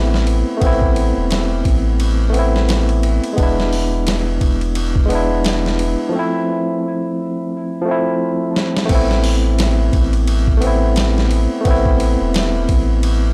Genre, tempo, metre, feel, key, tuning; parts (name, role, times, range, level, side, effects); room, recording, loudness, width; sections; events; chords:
trip hop; 87 BPM; 4/4; swing 58% on 16ths; A harmonic minor; A4 = 442 Hz
barky tine electric piano; accompaniment; 0.0-13.3 s; F3 to E4; -21 LUFS; equal; overdrive, harmonic tremolo, low-pass filter, tape echo
soft dub sub bass; bass; 0.0-13.3 s; E1 to A1; -20 LUFS; equal; tube saturation
boom bap sampler-style drum kit; drums; 0.1-13.2 s; crash cymbal, hi-hat, kick drum, ride cymbal, snare drum; -22 LUFS; equal
little or no reverb; dry, gritty hardware recording; -17 LUFS; mono
0.0-8.9 A section; 8.9-13.3 A section
break 6.1-8.9; drum fill 8.5-8.9; filter sweep on tine electric piano 8.9-13.3
0.0 Amadd9; 3.4 E7; 6.1 Fmaj7; 8.9 Amadd9